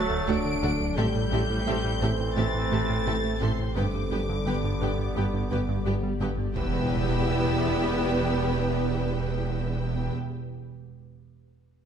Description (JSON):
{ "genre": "cinematic, hybrid orchestral and electronic film score", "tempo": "86 BPM", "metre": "4/4", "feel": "straight", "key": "E minor", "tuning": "A4 = 440 Hz", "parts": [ { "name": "warm symphonic violin section", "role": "melody", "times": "0.0-10.1 s", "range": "C6 to D7", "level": "-36 LUFS", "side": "left 3 dB", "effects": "none" }, { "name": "bright trombone section", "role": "sustained chords", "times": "0.0-10.1 s", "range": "D3 to C4", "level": "-35 LUFS", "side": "right 4 dB", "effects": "none" }, { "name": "mellow French horn section", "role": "sustained chords", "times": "0.0-10.1 s", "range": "C3 to E4", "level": "-34 LUFS", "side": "left 3 dB", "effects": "none" }, { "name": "warbly tape-like pad", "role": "sustained chords", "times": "0.0-10.1 s", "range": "D3 to D5", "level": "-35 LUFS", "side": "equal", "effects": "chorus, built-in reverb, phaser" }, { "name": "thumb-piano-like synth pluck", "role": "arpeggios", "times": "0.0-6.5 s", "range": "D3 to G4", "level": "-36 LUFS", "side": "left 3 dB", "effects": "chorus, tape echo" }, { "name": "round analog bass", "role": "riff", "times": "0.0-6.5 s", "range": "D2 to A3", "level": "-32 LUFS", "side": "right 2 dB", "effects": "none" }, { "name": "sub bass with octave", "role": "bass", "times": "0.0-10.1 s", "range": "D1 to A1", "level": "-34 LUFS", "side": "equal", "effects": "none" }, { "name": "warm symphonic violin section", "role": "second line", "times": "0.3-10.1 s", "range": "A4 to G5", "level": "-36 LUFS", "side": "left 2 dB", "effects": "none" }, { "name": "rich symphonic viola section", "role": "accompaniment", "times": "0.3-10.1 s", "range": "B3 to G4", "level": "-34 LUFS", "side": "right 1 dB", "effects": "none" }, { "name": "rich chamber double bass section", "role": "bass", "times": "0.3-10.1 s", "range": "E1 to D2", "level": "-32 LUFS", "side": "right 4 dB", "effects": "none" }, { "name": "warm symphonic cello section", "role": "bass", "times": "0.3-10.1 s", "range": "D2 to A2", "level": "-33 LUFS", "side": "right 2 dB", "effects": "none" }, { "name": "impact", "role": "sound effects", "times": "6.6-10.7 s", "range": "none", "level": "-35 LUFS", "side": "equal", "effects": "none" } ], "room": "moderate scoring stage reverb, RT60 1.6 s", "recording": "lossy compression artefacts", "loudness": "-24 LUFS", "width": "side -8 dB against mid", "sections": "0.0-6.6 A section; 6.6-9.3 B section", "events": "impact 6.6-9.3", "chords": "0.0 D; 1.0 Am7; 3.8 G; 6.6 Em" }